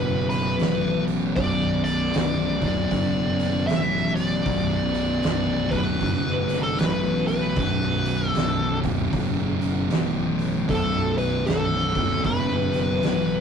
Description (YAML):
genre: stoner and doom metal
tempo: 77 BPM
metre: 4/4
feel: swing 62% on 8ths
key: B minor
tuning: A4 = 441 Hz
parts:
  - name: fuzz lead guitar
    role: melody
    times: 0.0-13.4 s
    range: A4 to E5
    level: -26 LUFS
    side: left 2 dB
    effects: wah, distortion
  - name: thick fuzz guitar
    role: riff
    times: 0.0-13.4 s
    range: B1 to B2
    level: -28 LUFS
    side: left 4 dB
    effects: distortion
  - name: thick fuzz guitar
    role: riff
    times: 0.0-13.4 s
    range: B1 to B2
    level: -27 LUFS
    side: right 5 dB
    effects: distortion
  - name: fuzz fingered electric bass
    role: bass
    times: 0.0-13.4 s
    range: B0 to A1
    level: -28 LUFS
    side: equal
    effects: overdrive
  - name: oversized low-tuned drum kit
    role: drums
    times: 0.3-13.3 s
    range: hi-hat, kick drum, snare drum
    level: -28 LUFS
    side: right 1 dB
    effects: none
room: light reverb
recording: rough rehearsal-room recording, tube saturation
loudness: -21 LUFS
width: side -7 dB against mid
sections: 0.0-13.4 A section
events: none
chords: 0.0 Bm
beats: 0.59 | 1.36 2.14 2.91 3.69 | 4.46 5.24 6.01 6.79 | 7.57 8.34 9.12 9.90 | 10.68 11.46 12.24 13.02